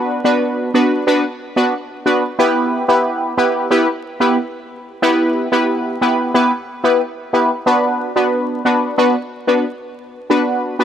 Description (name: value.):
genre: dancehall.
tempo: 91 BPM.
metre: 4/4.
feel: straight.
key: B minor.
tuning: A4 = 440 Hz.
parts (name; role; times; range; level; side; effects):
synth brass stab; solo; 0.0-10.8 s; B3 to B4; -14 LUFS; equal; chorus, phaser.
room: light reverb.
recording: vinyl crackle.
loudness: -14 LUFS.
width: side -9 dB against mid.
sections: 0.0-10.8 A section.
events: none.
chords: 0.0 Bm; 2.4 Em; 7.7 Bm.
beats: 0.41 1.07 1.73 | 2.39 3.05 3.71 4.37 | 5.03 5.69 6.35 7.00 | 7.66 8.32 8.98 9.64 | 10.30.